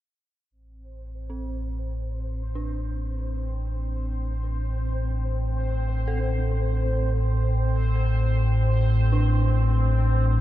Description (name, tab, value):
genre	dark ambient drone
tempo	free time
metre	none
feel	none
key	A minor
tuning	A4 = 440 Hz
part	deep rumbling drone	drone	0.9-10.4 s	A1 to A2	-23 LUFS	equal	built-in reverb
part	bubbling stepped-filter texture	texture	1.2-10.4 s	C4 to C5	-33 LUFS	left 1 dB	chorus, built-in reverb
part	dark detuned synth bell	arpeggios	1.3-10.4 s	C4 to A4	-38 LUFS	right 2 dB	chorus, tremolo, ping-pong delay
room	light reverb, digital ambience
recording	dark, warm production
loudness	-22 LUFS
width	side -14 dB against mid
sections	0.5-10.4 A section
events	fade-in on synth texture 0.5-10.4; fade-in on synth bell 0.5-10.4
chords	0.5 Am